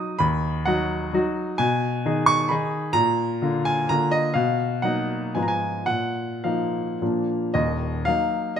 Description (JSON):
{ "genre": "classical, romantic triple-time dance for piano with dotted rhythms", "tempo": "102-138 BPM", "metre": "3/4", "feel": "rubato", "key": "Eb minor", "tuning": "A4 = 440 Hz", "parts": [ { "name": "clear baby grand piano", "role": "solo", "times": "0.0-8.6 s", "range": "Eb1 to D#6", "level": "-21 LUFS", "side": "equal", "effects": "none" } ], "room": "moderate recital hall reverb, RT60 1.4 s", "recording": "close, detailed microphones", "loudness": "-21 LUFS", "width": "side -8 dB against mid", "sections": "0.0-7.5 A section; 7.5-8.6 B section", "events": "none", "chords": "0.2 B/D#; 1.6 Abm/Cb; 3.0 Bb; 4.4 Bmaj7; 5.4 Fdim/Ab; 5.9 Bbsus4; 7.0 Bb; 7.5 Ebm" }